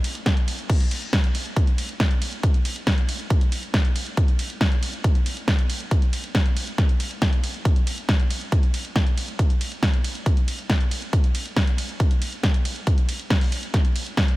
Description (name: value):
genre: trance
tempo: 138 BPM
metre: 4/4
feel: straight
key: none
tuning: none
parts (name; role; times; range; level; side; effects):
- punchy analog drum machine; drums; 0.0-14.4 s; crash cymbal, hi-hat, ride cymbal, snare drum; -27 LUFS; equal; none
- electronic kick drum; drums; 0.3-14.3 s; none; -20 LUFS; equal; none
room: little or no reverb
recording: none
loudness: -20 LUFS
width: side -19 dB against mid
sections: 0.0-14.4 A section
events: none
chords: none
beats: 0.26 | 0.70 1.13 1.57 2.00 | 2.44 2.87 3.31 3.74 | 4.17 4.61 5.04 5.48 | 5.91 6.35 6.78 7.22 | 7.65 8.09 8.52 8.96 | 9.39 9.83 10.26 10.70 | 11.13 11.57 12.00 12.44 | 12.87 13.30 13.74 14.17